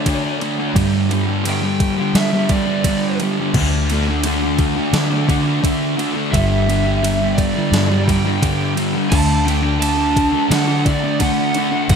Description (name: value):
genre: rock, shoegaze and dream pop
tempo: 86 BPM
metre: 4/4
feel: straight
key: unclear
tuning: A4 = 440 Hz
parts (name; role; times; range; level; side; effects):
- lead guitar through a small cranked amp; melody; 0.0-12.0 s; D5 to A5; -24 LUFS; right 3 dB; overdrive, ping-pong delay
- fuzz guitar; riff; 0.0-12.0 s; G2 to D4; -18 LUFS; equal; distortion, wide subtle chorus
- vintage muted fingered electric bass; bass; 0.0-12.0 s; G1 to G3; -21 LUFS; equal; none
- gated 80s digital drum machine; drums; 0.1-12.0 s; crash cymbal, kick drum, ride cymbal, snare drum; -22 LUFS; equal; gated reverb, gated reverb snare, overdrive
room: moderate plate reverb, RT60 2.3 s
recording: dreamy mix soaked in reverb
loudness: -15 LUFS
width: side -6 dB against mid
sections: 0.0-12.0 A section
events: none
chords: 0.0 D5; 0.8 G5; 3.5 D5; 6.3 G5; 9.1 D